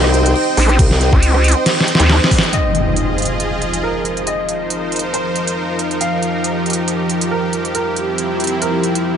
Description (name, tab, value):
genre	heavy wobble dubstep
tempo	138 BPM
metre	4/4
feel	swing 55% on 16ths, half-time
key	F minor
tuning	A4 = 435 Hz
part	supersaw pad	sustained chords	0.0-9.2 s	F3 to G5	-21 LUFS	right 1 dB	sidechain pumping
part	formant-sweep wobble bass	bass	0.0-1.1 s	C2	-14 LUFS	equal	chorus, overdrive
part	dubstep drum kit	drums	0.0-9.0 s	crash cymbal, hi-hat, rim click, snare drum	-18 LUFS	right 1 dB	none
part	deep dark ambient pad	texture	0.0-9.2 s	F3 to G5	-21 LUFS	equal	chorus, built-in reverb, sidechain pumping
part	vowel-sweep wobble bass	bass	0.6-2.2 s	Bb1 to Eb2	-12 LUFS	equal	chorus, overdrive
part	electronic kick drum	drums	0.8-2.4 s	none	-13 LUFS	equal	none
part	warm baby grand piano	melody	2.5-9.2 s	Bb4 to F5	-23 LUFS	equal	digital delay
part	impact	sound effects	2.5-4.3 s	none	-21 LUFS	equal	none
room	light reverb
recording	nothing above 10.4 kHz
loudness	-14 LUFS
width	side -8 dB against mid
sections	0.0-2.5 A section; 2.5-9.2 B section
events	drop 0.0-2.5; drum fill 1.7-2.5; band accent 2.4; impact 2.5-4.3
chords	0.0 Cm; 2.5 Fm7; 4.3 Ab6/F; 6.0 Ebadd9/F; 7.7 C/F